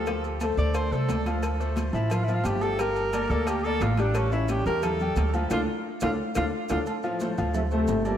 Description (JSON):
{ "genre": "latin, salsa", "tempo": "176 BPM", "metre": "4/4", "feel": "straight", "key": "D minor", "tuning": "A4 = 440 Hz", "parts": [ { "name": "warm tenor saxophone", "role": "melody", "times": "0.0-6.8 s", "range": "C#4 to D5", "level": "-30 LUFS", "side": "equal", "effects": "diffuse ambient delay" }, { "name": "bright grand piano", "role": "accompaniment", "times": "0.0-8.2 s", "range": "F3 to G5", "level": "-31 LUFS", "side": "left 3 dB", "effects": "none" }, { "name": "upright bass", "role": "bass", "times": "0.0-8.2 s", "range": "G1 to E2", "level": "-28 LUFS", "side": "equal", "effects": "none" }, { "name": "congas", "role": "percussion", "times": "0.1-8.1 s", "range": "none", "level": "-34 LUFS", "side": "equal", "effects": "none" }, { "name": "cowbell", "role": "percussion", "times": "0.1-6.8 s", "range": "none", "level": "-38 LUFS", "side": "left 4 dB", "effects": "none" }, { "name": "maracas", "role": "percussion", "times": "0.1-8.2 s", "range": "none", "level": "-49 LUFS", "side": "right 5 dB", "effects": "none" }, { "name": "agogo bells and timbales", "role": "percussion", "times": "0.2-8.2 s", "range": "none", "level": "-36 LUFS", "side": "right 5 dB", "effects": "none" }, { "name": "warm trombone section", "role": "melody", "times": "7.0-8.2 s", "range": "A2 to A3", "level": "-27 LUFS", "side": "left 1 dB", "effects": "diffuse ambient delay" } ], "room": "moderate lush hall reverb, RT60 2.1 s", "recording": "dreamy mix soaked in reverb", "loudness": "-24 LUFS", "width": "side -10 dB against mid", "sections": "0.0-6.9 A section; 6.9-8.2 B section", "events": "tenor saxophone solo 0.0-6.9; band accent 5.5-6.9; drum fill 6.2-6.9", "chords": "0.1 Dm7; 2.8 Gm; 4.2 A7; 5.5 Dm; 6.9 Dm7", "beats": "| 0.07 0.41 0.75 1.09 | 1.43 1.77 2.11 2.45 | 2.79 3.13 3.47 3.81 | 4.15 4.49 4.83 5.17 | 5.51 5.85 6.19 6.53 | 6.87 7.21 7.55 7.89" }